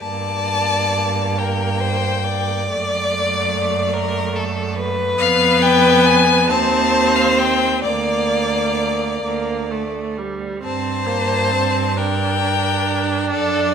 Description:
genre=classical, slow romantic movement for string quartet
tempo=42-48 BPM (dotted quarters)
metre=6/8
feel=rubato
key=G minor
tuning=A4 = 442 Hz
part: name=rich violin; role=melody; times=0.0-13.7 s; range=D5 to A5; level=-20 LUFS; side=left 6 dB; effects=none
part: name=clear violin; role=second line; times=0.0-13.7 s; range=A4 to D5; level=-21 LUFS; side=left 2 dB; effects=none
part: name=rich viola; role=accompaniment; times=0.0-13.7 s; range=G3 to D4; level=-23 LUFS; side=right 4 dB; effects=none
part: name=rich cello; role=bass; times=0.0-13.7 s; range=D2 to G2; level=-23 LUFS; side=right 5 dB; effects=none
room=wet recital hall reverb, RT60 1.6 s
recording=minimal, uncompressed stereo recording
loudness=-16 LUFS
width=side -7 dB against mid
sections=0.0-13.7 A section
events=none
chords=0.0 Gm; 2.7 D/F#; 5.2 Fdim; 6.5 Cm/Eb; 7.8 Bb/D; 9.2 D5; 10.6 Gm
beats=| 0.02 1.37 | 2.68 3.93 | 5.19 6.49 | 7.84 9.24 | 10.63 11.97 | 13.31

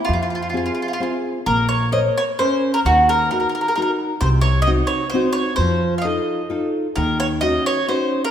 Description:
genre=italian folk, Italian serenade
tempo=131 BPM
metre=3/4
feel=straight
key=Bb harmonic minor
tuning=A4 = 438 Hz
part: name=mandolin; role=melody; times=0.0-8.3 s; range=F4 to F5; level=-20 LUFS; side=equal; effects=none
part: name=nylon-string guitar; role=accompaniment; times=0.1-8.2 s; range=C3 to Db5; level=-22 LUFS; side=left 1 dB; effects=none
part: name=upright bass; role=bass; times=0.1-7.6 s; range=Bb1 to F2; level=-21 LUFS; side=equal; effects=none
room=moderate scoring stage reverb, RT60 1.8 s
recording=minimal, uncompressed stereo recording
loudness=-17 LUFS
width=side -9 dB against mid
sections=0.0-1.5 A section; 1.5-8.3 B section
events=none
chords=0.1 Fm; 1.5 Bbmadd9; 2.9 Ebm; 4.2 Cdim; 5.6 F7; 7.0 Ebm7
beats=| 0.08 0.54 1.00 | 1.47 1.93 2.40 | 2.85 3.31 3.76 | 4.21 4.66 5.11 | 5.57 6.03 6.49 | 6.96 7.42 7.88

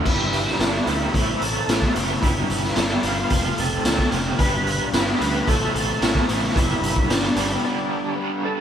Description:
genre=classic rock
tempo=111 BPM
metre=4/4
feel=straight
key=unclear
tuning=A4 = 437 Hz
part: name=raw garage guitar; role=riff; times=0.0-8.6 s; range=A2 to C5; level=-28 LUFS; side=left 4 dB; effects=overdrive, tremolo
part: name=raw garage guitar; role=riff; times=0.0-8.6 s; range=F2 to A3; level=-28 LUFS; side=right 5 dB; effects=overdrive, tremolo
part: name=growling picked electric bass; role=bass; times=0.0-7.6 s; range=F1 to D2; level=-28 LUFS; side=equal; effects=overdrive
part: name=overdriven tonewheel organ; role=melody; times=0.1-8.6 s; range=D4 to B4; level=-27 LUFS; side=right 1 dB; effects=slow rotary speaker, chorus vibrato
part: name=raw garage drum kit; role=drums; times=0.1-7.5 s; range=crash cymbal, hi-hat, kick drum, snare drum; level=-21 LUFS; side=equal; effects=none
part: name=string machine, full ensemble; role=sustained chords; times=4.4-8.6 s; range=G3 to C5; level=-37 LUFS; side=right 2 dB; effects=none
room=light reverb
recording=band playing live in one room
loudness=-19 LUFS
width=side -9 dB against mid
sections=0.1-8.6 A section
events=break 7.6-8.6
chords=0.1 G; 1.1 Am; 2.2 G; 3.3 F; 4.4 G; 5.5 Am; 6.6 G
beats=| 0.06 0.60 1.14 1.69 | 2.23 2.77 3.31 3.85 | 4.40 4.94 5.48 6.02 | 6.56 7.10 7.64 8.18

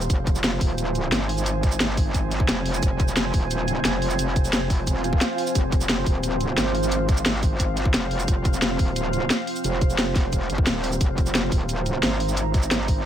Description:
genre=dark technical drum and bass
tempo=176 BPM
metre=4/4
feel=straight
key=F minor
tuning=A4 = 440 Hz
part: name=deep dark ambient pad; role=sustained chords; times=0.0-13.1 s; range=F3 to Bb5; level=-28 LUFS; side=right 1 dB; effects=chorus, built-in reverb, sidechain pumping
part: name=metallic wobble bass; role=bass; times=0.0-13.1 s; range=Eb1 to Ab1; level=-26 LUFS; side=equal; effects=distortion, chorus, tube saturation, sidechain pumping
part: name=drum and bass drum kit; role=drums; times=0.0-12.9 s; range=hi-hat, shaker, snare drum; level=-25 LUFS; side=equal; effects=none
part: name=electronic kick drum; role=drums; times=0.1-12.9 s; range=none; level=-22 LUFS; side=equal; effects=none
part: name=swell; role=sound effects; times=5.0-5.6 s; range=none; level=-32 LUFS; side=right 3 dB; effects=none
room=light reverb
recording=none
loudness=-20 LUFS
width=side -10 dB against mid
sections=0.0-13.1 A section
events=swell 5.0-5.6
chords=0.0 F5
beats=| 0.10 0.44 0.78 1.12 | 1.46 1.80 2.14 2.48 | 2.83 3.17 3.51 3.85 | 4.19 4.53 4.87 5.21 | 5.55 5.89 6.24 6.58 | 6.92 7.26 7.60 7.94 | 8.28 8.62 8.96 9.30 | 9.64 9.98 10.32 10.67 | 11.01 11.35 11.69 12.03 | 12.37 12.71 13.05

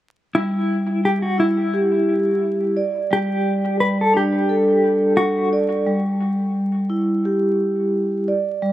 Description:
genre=hip hop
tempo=87 BPM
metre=4/4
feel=swing 55% on 16ths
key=unclear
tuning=A4 = 441 Hz
part: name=mellow electric guitar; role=melody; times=0.3-5.5 s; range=E4 to B4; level=-22 LUFS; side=left 1 dB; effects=tremolo, tape echo
part: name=vibraphone with soft mallets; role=accompaniment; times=0.3-8.7 s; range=G3 to D5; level=-18 LUFS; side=equal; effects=cassette tape
room=light reverb, small room ambience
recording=vinyl crackle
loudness=-17 LUFS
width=side -14 dB against mid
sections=0.4-8.7 A section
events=none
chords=0.4 Em/G; 2.8 Gsus2; 5.9 Em/G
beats=| 0.35 1.04 1.73 2.42 | 3.11 3.80 4.49 5.18 | 5.87 6.56 7.25 7.94 | 8.63

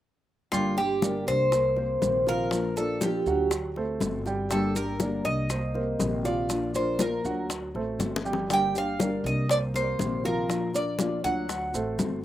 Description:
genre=latin, Cuban son and guajira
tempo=120 BPM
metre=4/4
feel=straight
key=G minor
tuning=A4 = 440 Hz
part: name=Cuban tres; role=melody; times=0.5-12.0 s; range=F4 to G5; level=-28 LUFS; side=right 1 dB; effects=slapback echo
part: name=nylon-string guitar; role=accompaniment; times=0.5-12.2 s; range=C3 to G4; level=-32 LUFS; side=left 3 dB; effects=none
part: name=dark concert grand piano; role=arpeggios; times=0.5-12.2 s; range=F3 to G5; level=-32 LUFS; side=right 2 dB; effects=none
part: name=upright bass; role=bass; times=0.5-12.2 s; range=G1 to D2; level=-34 LUFS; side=equal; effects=none
part: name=bongos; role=percussion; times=0.5-12.2 s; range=none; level=-36 LUFS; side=left 5 dB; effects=none
part: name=congas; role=percussion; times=0.5-12.2 s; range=none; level=-33 LUFS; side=left 2 dB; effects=none
part: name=maracas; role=percussion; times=0.5-12.2 s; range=none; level=-38 LUFS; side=right 5 dB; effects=none
room=light reverb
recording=recorded outdoors, with no room sound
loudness=-24 LUFS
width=side -13 dB against mid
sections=0.5-12.2 A section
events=drum fill 8.0-8.5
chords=0.5 Gm; 1.5 Cm7; 2.5 Bb; 3.5 D7; 4.5 Gm; 5.5 Cm7; 6.5 Bb; 7.5 D7; 8.5 Gm; 9.5 Cm7; 10.5 Bb; 11.5 D7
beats=| 0.52 1.02 1.52 2.02 | 2.52 3.01 3.51 4.01 | 4.51 5.01 5.50 6.00 | 6.50 7.00 7.50 8.00 | 8.50 9.00 9.50 9.99 | 10.49 10.99 11.49 11.99

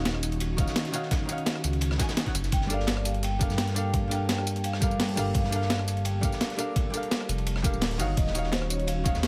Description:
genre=liquid drum and bass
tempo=170 BPM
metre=4/4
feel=straight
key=G minor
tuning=A4 = 440 Hz
part: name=hollow-body jazz guitar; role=accompaniment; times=0.0-9.3 s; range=Eb3 to Ab5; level=-36 LUFS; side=equal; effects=dub echo
part: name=airy breathy pad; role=sustained chords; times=0.0-9.3 s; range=Bb3 to A5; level=-43 LUFS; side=equal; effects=chorus, sidechain pumping
part: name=smooth synth bass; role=bass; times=0.0-9.3 s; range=D1 to G2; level=-32 LUFS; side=equal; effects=none
part: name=breakbeat sampler-style drum kit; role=drums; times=0.1-9.3 s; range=hi-hat, rim click, snare drum, tambourine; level=-33 LUFS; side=equal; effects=overdrive
part: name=crunchy breakbeat drum kit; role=drums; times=0.1-9.3 s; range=hi-hat, ride cymbal, snare drum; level=-40 LUFS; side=equal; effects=high-pass filter on cymbals, high-pass filter on hats, high-pass filter on snare, high-pass filter on room
part: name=electronic kick drum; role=drums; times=0.6-9.1 s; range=none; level=-30 LUFS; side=equal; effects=overdrive
part: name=vibraphone with hard mallets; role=melody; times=2.5-9.3 s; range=C5 to G5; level=-38 LUFS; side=equal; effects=delay
room=small room ambience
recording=none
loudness=-28 LUFS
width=mono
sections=0.0-9.3 A section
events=none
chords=0.0 Ebm9; 2.5 Gm9; 8.2 Ebm9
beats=0.05 0.41 0.76 | 1.11 1.47 1.82 2.17 | 2.52 2.88 3.23 3.58 | 3.94 4.29 4.64 5.00 | 5.35 5.70 6.05 6.41 | 6.76 7.11 7.47 7.82 | 8.17 8.53 8.88 9.23

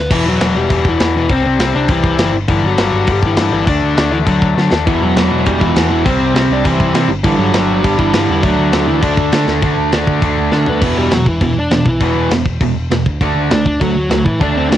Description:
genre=punk rock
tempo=202 BPM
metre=4/4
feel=straight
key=E minor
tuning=A4 = 440 Hz
part: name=smooth overdriven lead guitar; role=melody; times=0.0-14.8 s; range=E3 to D5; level=-16 LUFS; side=equal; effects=cassette tape
part: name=overdriven picked electric bass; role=bass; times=0.0-14.8 s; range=E1 to D3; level=-19 LUFS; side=equal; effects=none
part: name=tight distorted guitar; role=riff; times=0.1-14.8 s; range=E2 to D4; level=-18 LUFS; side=left 10 dB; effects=distortion, cassette tape
part: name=tight metal drum kit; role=drums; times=0.1-14.8 s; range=crash cymbal, kick drum, snare drum, toms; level=-18 LUFS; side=equal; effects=cassette tape
part: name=distorted electric guitar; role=riff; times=4.9-14.8 s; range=E2 to D4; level=-18 LUFS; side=right 9 dB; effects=distortion, cassette tape
room=little or no reverb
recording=home recording on cassette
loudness=-11 LUFS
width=side -11 dB against mid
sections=0.1-9.6 A section; 9.6-10.8 B section; 10.8-14.8 C section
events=drum fill 4.6, 9.5, 10.5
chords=0.1 Em; 1.3 C; 2.3 G5; 3.7 D; 4.9 Em; 6.1 C; 7.1 G5; 8.4 D; 10.8 E5; 13.1 D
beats=| 0.11 0.41 0.70 1.00 | 1.30 1.60 1.89 2.19 | 2.49 2.79 3.08 3.38 | 3.68 3.98 4.27 4.57 | 4.87 5.17 5.46 5.76 | 6.06 6.35 6.65 6.95 | 7.25 7.54 7.84 8.14 | 8.44 8.73 9.03 9.33 | 9.63 9.92 10.22 10.52 | 10.82 11.12 11.42 11.72 | 12.02 12.31 12.61 12.91 | 13.21 13.51 13.81 14.11 | 14.41 14.71

